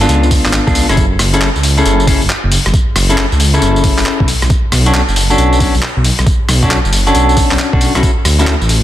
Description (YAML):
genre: UK garage, two-step garage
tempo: 136 BPM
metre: 4/4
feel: swing 65% on 16ths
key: F# minor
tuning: A4 = 441 Hz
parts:
  - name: clean electric guitar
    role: stabs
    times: 0.0-8.5 s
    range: B3 to A4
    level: -15 LUFS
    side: left 1 dB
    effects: digital delay
  - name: dark detuned saw bass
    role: bass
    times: 0.0-8.8 s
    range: F#1 to D2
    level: -13 LUFS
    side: equal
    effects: none
  - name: boom bap sampler-style drum kit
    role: drums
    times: 0.0-8.8 s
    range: handclaps, hi-hat, rim click, tambourine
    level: -16 LUFS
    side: equal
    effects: overdrive
  - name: electronic kick drum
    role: drums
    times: 0.3-8.1 s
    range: none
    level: -14 LUFS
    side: equal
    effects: overdrive
room: light reverb, digital ambience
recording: dense, heavily limited modern master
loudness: -9 LUFS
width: side -13 dB against mid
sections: 0.0-8.8 A section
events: none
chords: 0.0 C#7b9b13; 1.0 F#m9; 4.3 Bm9; 8.0 Dmaj9